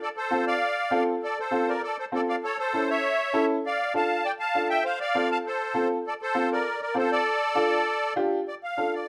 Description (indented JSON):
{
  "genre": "latin",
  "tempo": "199 BPM",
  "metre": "4/4",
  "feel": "straight",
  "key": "D minor",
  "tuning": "A4 = 440 Hz",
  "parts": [
    { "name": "musette accordion", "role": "melody", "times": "0.0-9.1 s", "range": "A4 to A5", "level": "-28 LUFS", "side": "equal", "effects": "plate reverb" },
    { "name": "clear upright piano", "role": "accompaniment", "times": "0.3-9.0 s", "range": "C4 to A4", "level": "-29 LUFS", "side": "equal", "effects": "none" }
  ],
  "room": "wet studio ambience, RT60 0.5 s",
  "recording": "none",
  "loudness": "-26 LUFS",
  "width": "mono",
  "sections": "0.0-8.5 A section",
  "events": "none",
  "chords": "0.0 F; 2.4 A; 3.6 Dm; 4.8 F; 7.3 Dm"
}